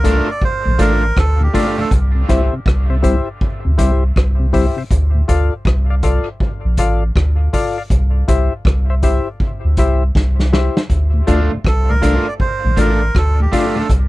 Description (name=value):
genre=dub reggae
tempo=80 BPM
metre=4/4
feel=swing 64% on 16ths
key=D minor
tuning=A4 = 440 Hz
part: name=melodica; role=melody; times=0.0-1.9, 11.7-13.9 s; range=G4 to D5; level=-22 LUFS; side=right 3 dB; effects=dub echo
part: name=electric guitar at the edge of break-up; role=accompaniment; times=0.0-1.9, 11.3-13.9 s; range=A3 to F4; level=-24 LUFS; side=right 4 dB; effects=dub echo
part: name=tonewheel organ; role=accompaniment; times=0.0-5.2, 11.1-13.8 s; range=D2 to F4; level=-20 LUFS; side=left 2 dB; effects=overdrive, slow rotary speaker
part: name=percussive organ stab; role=stabs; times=0.0-13.8 s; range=E4 to F5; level=-22 LUFS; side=left 4 dB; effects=chorus, dub echo
part: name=soft dub sub bass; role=bass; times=0.0-14.1 s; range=A1 to D2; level=-14 LUFS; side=equal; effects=none
part: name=vintage drum kit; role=drums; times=0.0-14.1 s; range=hi-hat, kick drum, rim click, snare drum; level=-19 LUFS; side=equal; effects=none
room=little or no reverb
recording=none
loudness=-13 LUFS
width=side -18 dB against mid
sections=0.0-14.1 A section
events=drum fill 10.1-10.9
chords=0.0 Dm; 1.9 C; 4.9 Dm; 7.9 C; 10.9 Dm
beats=0.41 1.16 | 1.91 2.66 3.41 4.16 | 4.91 5.65 6.40 7.15 | 7.90 8.65 9.40 10.15 | 10.90 11.65 12.40 13.15 | 13.89